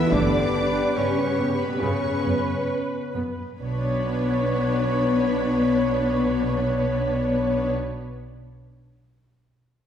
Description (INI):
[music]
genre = cinematic, epic orchestral film score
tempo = 66-74 BPM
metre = 4/4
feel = straight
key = B minor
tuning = A4 = 440 Hz
[part]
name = rich symphonic violin section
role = melody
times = 0.0-7.7 s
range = B5 to E6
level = -38 LUFS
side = left 1 dB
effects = none
[part]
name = rich studio violin section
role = second line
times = 0.0-7.7 s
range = B4 to D5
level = -32 LUFS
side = left 2 dB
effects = none
[part]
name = rich symphonic viola section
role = accompaniment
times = 0.0-7.7 s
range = C#3 to C#5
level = -29 LUFS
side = equal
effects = none
[part]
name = warm French horn section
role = sustained chords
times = 0.0-7.7 s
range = G3 to D4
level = -29 LUFS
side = left 3 dB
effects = none
[part]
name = warm trombone section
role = sustained chords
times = 0.0-7.7 s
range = B2 to B3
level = -29 LUFS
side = left 2 dB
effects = none
[part]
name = clear trumpet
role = stabs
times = 0.0-7.7 s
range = B4 to C#5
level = -28 LUFS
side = right 1 dB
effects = none
[part]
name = rich symphonic cello section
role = bass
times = 0.0-7.7 s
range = B3 to D4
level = -30 LUFS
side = left 1 dB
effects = none
[part]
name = rich symphonic double bass section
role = bass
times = 0.1-7.7 s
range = B1 to G2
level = -29 LUFS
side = right 1 dB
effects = none
[part]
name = taiko ensemble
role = drums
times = 0.1-0.9 s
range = none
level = -28 LUFS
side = right 1 dB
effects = none
[sound]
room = wet scoring stage reverb, RT60 1.7 s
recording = heard from further back in the room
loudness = -21 LUFS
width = side -9 dB against mid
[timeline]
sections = 0.0-3.6 A section; 3.6-7.2 B section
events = slowing down 0.0-3.6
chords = 0.1 G; 1.8 F#sus4; 3.6 Bmadd9